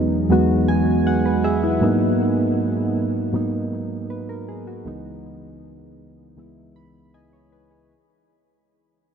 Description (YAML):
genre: R&B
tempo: 79 BPM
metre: 4/4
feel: straight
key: unclear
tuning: A4 = 438 Hz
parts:
  - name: soft electric-piano-like synth keys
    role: solo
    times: 0.0-8.1 s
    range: C#2 to B5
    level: -19 LUFS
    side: right 1 dB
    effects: chorus, ping-pong delay
room: wet huge ambient reverb, RT60 7.7 s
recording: dreamy mix soaked in reverb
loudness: -18 LUFS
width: side -7 dB against mid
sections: 0.0-7.9 A section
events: fade-out 0.0-7.9; synth keys fill 0.3-1.8, 6.4-7.9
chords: 0.0 Emaj7; 1.8 G#m9; 4.9 C#m7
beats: 0.30 1.06 | 1.82 2.58 3.33 4.09 | 4.85 5.61 6.37 7.13